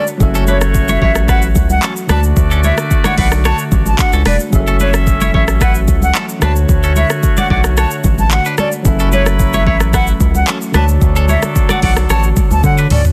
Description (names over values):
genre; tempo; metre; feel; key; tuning
afrobeats; 111 BPM; 4/4; straight; unclear; A4 = 440 Hz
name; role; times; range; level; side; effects
breathy silver concert flute; melody; 0.0-13.0 s; C#5 to A5; -22 LUFS; equal; delay
tine electric piano; accompaniment; 0.0-13.1 s; D3 to E5; -24 LUFS; equal; none
airy breathy pad; sustained chords; 0.0-13.1 s; D3 to C#5; -30 LUFS; equal; none
twangy electric guitar; riff; 0.0-13.0 s; C#4 to D5; -25 LUFS; equal; delay
afro-pop drum kit; drums; 0.1-13.1 s; handclaps, hi-hat, kick drum, rim click, shaker, toms; -18 LUFS; equal; none
clear horn section; second line; 0.2-12.9 s; F#3 to E5; -26 LUFS; equal; none
round analog bass; bass; 0.2-13.0 s; E1 to D3; -16 LUFS; equal; none
congas; percussion; 0.2-13.0 s; none; -25 LUFS; equal; none
room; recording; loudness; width
digital ambience; dense, heavily limited modern master; -13 LUFS; mono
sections
0.0-13.1 A section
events
drum fill 12.6-13.1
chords
0.2 F#m7; 2.1 Dmaj7; 4.5 F#m7; 6.4 Dmaj7; 8.9 F#m7; 10.7 Dmaj7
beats
| 0.20 0.74 1.28 1.82 | 2.37 2.91 3.45 3.99 | 4.53 5.07 5.61 6.15 | 6.69 7.23 7.77 8.31 | 8.85 9.39 9.93 10.47 | 11.01 11.55 12.10 12.64